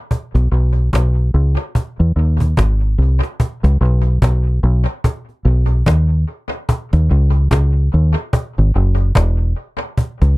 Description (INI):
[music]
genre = lovers rock reggae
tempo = 73 BPM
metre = 4/4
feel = swing 58% on 16ths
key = unclear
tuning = A4 = 440 Hz
[part]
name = cajon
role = drums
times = 0.1-10.4 s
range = none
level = -20 LUFS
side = equal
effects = tape echo
[part]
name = deep dub fingered electric bass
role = bass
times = 0.3-10.4 s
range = E1 to E2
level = -12 LUFS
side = equal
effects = none
[sound]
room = little or no reverb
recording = dry, close 1970s-style studio recording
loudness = -14 LUFS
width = side -21 dB against mid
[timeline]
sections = 0.0-3.4 A section; 3.4-10.4 B section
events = none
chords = none